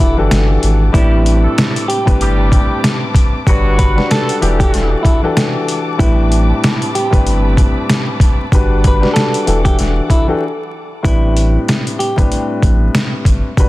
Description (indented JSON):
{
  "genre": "hip hop, boom-bap hip-hop",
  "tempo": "95 BPM",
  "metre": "4/4",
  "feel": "swing 58% on 16ths",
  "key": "A dorian",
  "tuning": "A4 = 440 Hz",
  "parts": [
    { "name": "semi-hollow electric guitar", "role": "melody", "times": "0.0-12.5 s", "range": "E4 to B4", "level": "-20 LUFS", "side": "right 1 dB", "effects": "high-pass filter, low-pass filter, ping-pong delay" },
    { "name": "dark grand piano", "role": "accompaniment", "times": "0.0-13.7 s", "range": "A2 to B4", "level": "-19 LUFS", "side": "left 2 dB", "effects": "cassette tape, high-pass filter, low-pass filter" },
    { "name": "warm studio string section", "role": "sustained chords", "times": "0.0-11.0 s", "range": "C4 to D6", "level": "-26 LUFS", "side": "left 1 dB", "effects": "high-pass filter, low-pass filter" },
    { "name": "warm sub bass", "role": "bass", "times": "0.0-13.7 s", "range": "E1 to A1", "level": "-14 LUFS", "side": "equal", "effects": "none" },
    { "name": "trip hop sampler-style drum kit", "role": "drums", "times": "0.0-13.7 s", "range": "hi-hat, kick drum, snare drum", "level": "-13 LUFS", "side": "equal", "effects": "none" },
    { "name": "clear horn section", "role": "stabs", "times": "0.9-5.0 s", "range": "F#3 to A4", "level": "-23 LUFS", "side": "right 1 dB", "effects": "high-pass filter, low-pass filter, ping-pong delay" }
  ],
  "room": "studio reverb",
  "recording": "dense, heavily limited modern master, vinyl crackle",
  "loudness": "-11 LUFS",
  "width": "side -18 dB against mid",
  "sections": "0.0-11.0 A section; 11.0-13.7 B section",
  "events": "break 10.4-11.0",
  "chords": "0.0 Em11; 0.9 Am11; 3.5 Gmaj7; 4.4 Em11; 6.0 Am11; 8.5 Gmaj7; 9.5 Em11; 11.0 Am11",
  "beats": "0.31 | 0.94 1.57 2.20 2.84 | 3.47 4.10 4.73 5.36 | 5.99 6.62 7.26 7.89 | 8.52 9.15 9.78 10.41 | 11.05 11.68 12.31 12.94 | 13.57"
}